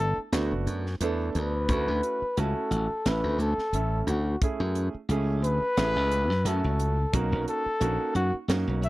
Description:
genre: electric jazz fusion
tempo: 88 BPM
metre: 4/4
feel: swing 56% on 16ths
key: unclear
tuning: A4 = 440 Hz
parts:
  - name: breathy trumpet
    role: melody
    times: 0.0-8.9 s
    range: F#4 to E5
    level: -29 LUFS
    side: left 1 dB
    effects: none
  - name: warm baby grand piano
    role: accompaniment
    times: 0.0-8.9 s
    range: A3 to A4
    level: -33 LUFS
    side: right 5 dB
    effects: none
  - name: glassy slap bass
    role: bass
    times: 0.0-8.9 s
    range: F#1 to F#2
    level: -27 LUFS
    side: equal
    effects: none
  - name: tight funk drum kit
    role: drums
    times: 0.3-8.9 s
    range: hi-hat, kick drum, snare drum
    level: -30 LUFS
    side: equal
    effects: none
room: little or no reverb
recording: dry, close 1970s-style studio recording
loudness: -24 LUFS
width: side -18 dB against mid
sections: 0.0-8.9 A section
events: trumpet solo 0.0-8.9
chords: 0.0 Gmaj9 (rootless); 1.7 Dmaj9; 7.1 Bmaj9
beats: 0.32 1.01 | 1.69 2.37 3.05 3.73 | 4.41 5.09 5.77 6.45 | 7.13 7.81 8.49

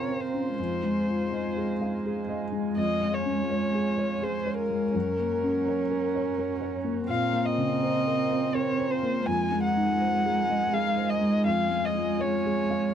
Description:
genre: neoclassical piano and strings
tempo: 82 BPM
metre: 3/4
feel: rubato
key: Bb minor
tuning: A4 = 440 Hz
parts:
  - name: muted violin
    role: melody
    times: 0.0-12.9 s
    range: Bb4 to Ab5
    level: -29 LUFS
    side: left 2 dB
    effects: none
  - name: muted cello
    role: second line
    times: 0.0-12.9 s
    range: Ab3 to Db4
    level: -30 LUFS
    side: right 10 dB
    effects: none
  - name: felt-muted upright piano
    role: accompaniment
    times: 0.0-12.9 s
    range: F2 to F5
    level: -29 LUFS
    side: left 4 dB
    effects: none
  - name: pedal harmonium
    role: sustained chords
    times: 0.0-12.9 s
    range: Db3 to F5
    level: -39 LUFS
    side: right 6 dB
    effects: none
room: light reverb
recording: dry, close 1970s-style studio recording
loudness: -24 LUFS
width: side -9 dB against mid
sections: 0.0-12.9 A section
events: none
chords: 0.0 Bbmadd9; 0.6 Fm7; 2.8 Db/F; 4.9 Gb; 7.1 Bbmadd9; 9.3 Fm7; 11.5 Db/F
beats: | 0.58 1.32 2.04 | 2.77 3.50 4.23 | 4.95 5.66 6.38 | 7.09 7.82 8.55 | 9.27 10.00 10.73 | 11.47 12.21

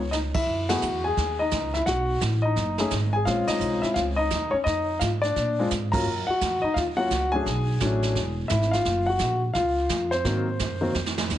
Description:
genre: jazz piano trio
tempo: 172 BPM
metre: 4/4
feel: swing 63% on 8ths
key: unclear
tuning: A4 = 440 Hz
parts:
  - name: warm grand piano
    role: melody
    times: 0.0-11.3 s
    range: Eb3 to Bb5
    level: -24 LUFS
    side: left 2 dB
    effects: plate reverb
  - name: upright bass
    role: bass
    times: 0.0-11.4 s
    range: E1 to Bb2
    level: -28 LUFS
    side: right 1 dB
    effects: none
  - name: jazz brush drum kit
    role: drums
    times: 0.1-11.4 s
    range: brushed snare drum, crash cymbal, hi-hat, kick drum, ride cymbal, snare drum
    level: -31 LUFS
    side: right 4 dB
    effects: none
room: moderate club reverb, RT60 0.5 s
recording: heavily compressed radio sound, multiband compression, nothing above 10.3 kHz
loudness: -22 LUFS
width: side -12 dB against mid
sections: 0.5-11.4 A section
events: band accent 0.3, 0.6, 3.4, 5.9; drum fill 11.0-11.3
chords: 0.5 Gb7sus2; 1.9 Cb13; 3.3 Bbm7; 4.7 Fm7; 5.4 Bb7; 6.1 Ebm7; 7.5 Cbm7; 8.2 E; 8.9 Gbmaj7; 10.3 Ab7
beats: 0.12 | 0.47 0.82 1.17 1.52 | 1.87 2.22 2.57 2.92 | 3.27 3.62 3.97 4.32 | 4.67 5.01 5.36 5.71 | 6.06 6.41 6.76 7.11 | 7.46 7.81 8.16 8.51 | 8.86 9.21 9.55 9.90 | 10.25 10.60 10.95 11.30

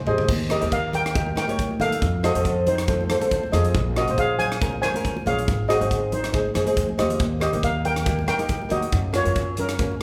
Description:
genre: calypso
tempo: 139 BPM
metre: 4/4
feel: swing 54% on 16ths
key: unclear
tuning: A4 = 444 Hz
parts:
  - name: upright bass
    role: bass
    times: 0.0-10.0 s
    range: Ab1 to Gb2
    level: -29 LUFS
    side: equal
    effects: none
  - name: steel pan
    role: melody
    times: 0.1-10.0 s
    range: Db4 to Ab5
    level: -27 LUFS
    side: equal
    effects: none
  - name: flamenco guitar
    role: accompaniment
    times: 0.1-10.0 s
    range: F3 to Db5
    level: -29 LUFS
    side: equal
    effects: none
  - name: crisp fusion drum kit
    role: drums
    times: 0.1-9.9 s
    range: crash cymbal, hi-hat, kick drum, rim click, toms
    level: -30 LUFS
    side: equal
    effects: none
  - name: congas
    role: percussion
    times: 0.1-10.0 s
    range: none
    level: -36 LUFS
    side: equal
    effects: none
room: wet large studio reverb, RT60 1.4 s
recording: band playing live in one room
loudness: -23 LUFS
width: mono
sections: 0.3-10.0 A section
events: drum fill 0.0, 6.8-7.2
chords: 0.3 Eb; 2.0 F7; 3.8 Bbm7; 5.5 Ab; 7.2 Eb; 8.9 Gb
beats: | 0.29 0.73 1.16 1.59 | 2.02 2.46 2.89 3.32 | 3.75 4.18 4.61 5.05 | 5.48 5.91 6.34 6.77 | 7.20 7.64 8.07 8.50 | 8.93 9.36 9.80

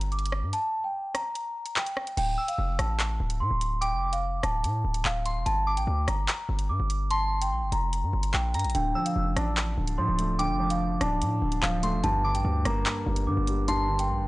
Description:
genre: hip hop, drill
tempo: 146 BPM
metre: 4/4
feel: half-time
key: D minor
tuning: A4 = 441 Hz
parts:
  - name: large celesta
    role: melody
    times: 0.0-14.3 s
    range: F5 to D6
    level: -30 LUFS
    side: equal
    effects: low-pass filter, tape echo
  - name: hard-hitting 808-style bass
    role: bass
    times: 0.0-14.3 s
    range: D1 to A2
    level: -28 LUFS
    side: equal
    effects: none
  - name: drill drum kit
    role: drums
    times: 0.0-14.1 s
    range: crash cymbal, handclaps, hi-hat, rim click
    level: -31 LUFS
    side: equal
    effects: none
  - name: soft synth bell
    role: second line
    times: 2.4-14.3 s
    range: Bb5 to E6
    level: -34 LUFS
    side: equal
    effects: chorus, tape echo
  - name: warm grand piano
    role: accompaniment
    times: 8.7-14.3 s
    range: G2 to D4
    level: -29 LUFS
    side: right 1 dB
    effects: low-pass filter
room: light reverb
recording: dry, gritty hardware recording, transformer saturation, nothing above 10.5 kHz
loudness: -25 LUFS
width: side -20 dB against mid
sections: 0.0-2.2 A section; 2.2-14.3 B section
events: kick muted 0.5-2.2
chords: 0.0 Gm; 2.2 Dm; 5.5 Gm; 8.7 Dm; 12.0 Gm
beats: 0.12 | 0.53 0.94 1.35 1.76 | 2.17 2.58 3.00 3.41 | 3.82 4.23 4.64 5.05 | 5.46 5.87 6.28 6.69 | 7.10 7.51 7.93 8.34 | 8.75 9.16 9.57 9.98 | 10.39 10.80 11.21 11.62 | 12.04 12.45 12.86 13.27 | 13.68 14.09

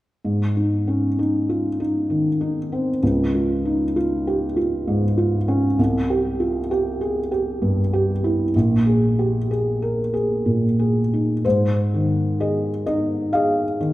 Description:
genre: classical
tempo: 64 BPM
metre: 3/4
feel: rubato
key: Ab major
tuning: A4 = 436 Hz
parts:
  - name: felt-muted upright piano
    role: accompaniment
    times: 0.2-13.9 s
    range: Bb1 to F5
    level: -18 LUFS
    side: equal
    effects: none
room: wet recital hall reverb, RT60 1.7 s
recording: recorded in a church or concert hall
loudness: -18 LUFS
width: side -16 dB against mid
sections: 0.2-11.4 A section; 11.4-13.9 B section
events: none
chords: 0.2 Ab5; 3.0 Db; 5.8 C5; 8.5 Ebsus4/Bb (rootless); 11.4 Ab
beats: | 0.24 1.18 2.10 | 3.02 3.96 4.86 | 5.78 6.71 7.61 | 8.54 9.47 10.44 | 11.45 12.39 13.33

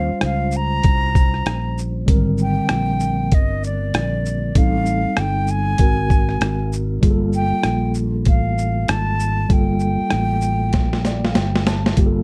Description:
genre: hip hop, jazz-hop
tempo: 97 BPM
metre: 4/4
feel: swing 64% on 16ths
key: G minor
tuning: A4 = 440 Hz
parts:
  - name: breathy silver concert flute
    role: melody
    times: 0.0-11.4 s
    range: D5 to Bb5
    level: -27 LUFS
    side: equal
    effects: none
  - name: mellow tine electric piano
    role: accompaniment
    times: 0.0-12.2 s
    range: D3 to A5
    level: -26 LUFS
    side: equal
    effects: none
  - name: sustaining fretless electric bass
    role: bass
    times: 0.0-12.2 s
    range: G1 to Db2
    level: -24 LUFS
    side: equal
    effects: ensemble chorus
  - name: boom bap sampler-style drum kit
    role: drums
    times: 0.2-12.2 s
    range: hi-hat, kick drum, rim click, shaker, snare drum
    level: -20 LUFS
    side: equal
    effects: none
room: light reverb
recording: dark, warm production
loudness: -19 LUFS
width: mono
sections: 0.0-12.0 A section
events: drum fill 10.7-12.0; tine electric piano fill 10.7-12.0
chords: 0.0 Eb13 (rootless); 2.1 Abmaj9#11; 4.6 Am7b5; 5.8 Ab9; 7.0 Gm9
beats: 0.22 0.84 1.46 | 2.08 2.69 3.31 3.93 | 4.55 5.17 5.79 6.41 | 7.03 7.64 8.26 8.88 | 9.50 10.12 10.74 11.36 | 11.97

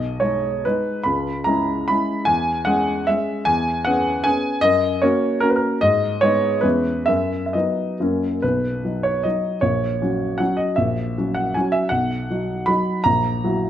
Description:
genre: classical, romantic triple-time dance for piano with dotted rhythms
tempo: 126-172 BPM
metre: 3/4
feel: rubato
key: B major from 3.5 s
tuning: A4 = 441 Hz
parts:
  - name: warm baby grand piano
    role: solo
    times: 0.0-13.7 s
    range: A#1 to B5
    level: -18 LUFS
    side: equal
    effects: none
room: light reverb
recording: close, detailed microphones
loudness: -18 LUFS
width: side -10 dB against mid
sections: 0.0-8.4 A section; 8.4-13.7 B section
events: none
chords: 0.0 G#m/B; 1.0 C#m7; 2.3 C#m/E; 3.5 C#m7/E; 4.6 F#; 5.8 G#m; 6.6 C#m7/E; 7.1 B/F#; 8.0 F#; 8.4 B; 9.6 F#/A#; 11.9 B; 13.1 F#7/A#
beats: 0.20 0.64 | 1.04 1.46 1.88 | 2.27 2.66 3.07 | 3.46 3.85 4.25 | 4.63 5.02 5.42 | 5.81 6.22 6.64 | 7.08 7.54 8.00 | 8.43 8.85 9.25 | 9.62 10.01 10.40 | 10.78 11.16 11.55 | 11.91 12.29 12.68 | 13.05 13.43

